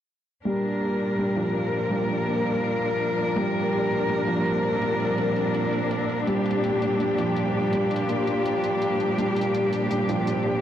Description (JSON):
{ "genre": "half-time drum and bass", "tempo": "165 BPM", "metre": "4/4", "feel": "swing 56% on 16ths, half-time", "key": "G minor", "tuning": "A4 = 440 Hz", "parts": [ { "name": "rich studio cello section", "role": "sustained chords", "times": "0.5-10.6 s", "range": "Bb2 to Bb4", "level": "-24 LUFS", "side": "equal", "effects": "none" }, { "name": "felt-muted upright piano", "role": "arpeggios", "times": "0.5-10.6 s", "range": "F3 to G4", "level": "-27 LUFS", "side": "equal", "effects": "low-pass filter, analog delay" }, { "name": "electronic hi-hat", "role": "drums", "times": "0.5-10.4 s", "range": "none", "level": "-47 LUFS", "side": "right 1 dB", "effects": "overdrive, low-pass filter on hats, low-pass filter on room" }, { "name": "metallic inharmonic drone", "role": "texture", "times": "1.5-10.6 s", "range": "F3 to F4", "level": "-32 LUFS", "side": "right 2 dB", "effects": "chorus, built-in reverb" } ], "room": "light reverb", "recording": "dry, gritty hardware recording", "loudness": "-22 LUFS", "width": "side -10 dB against mid", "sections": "0.5-10.6 A section", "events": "filter sweep on drum 0.5-10.6; filter sweep on felt piano 0.5-10.6", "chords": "0.5 Gm", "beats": "| 0.46 0.82 1.18 1.55 | 1.91 2.27 2.64 3.00 | 3.36 3.73 4.09 4.46 | 4.82 5.18 5.55 5.91 | 6.27 6.64 7.00 7.36 | 7.73 8.09 8.46 8.82 | 9.18 9.55 9.91 10.27" }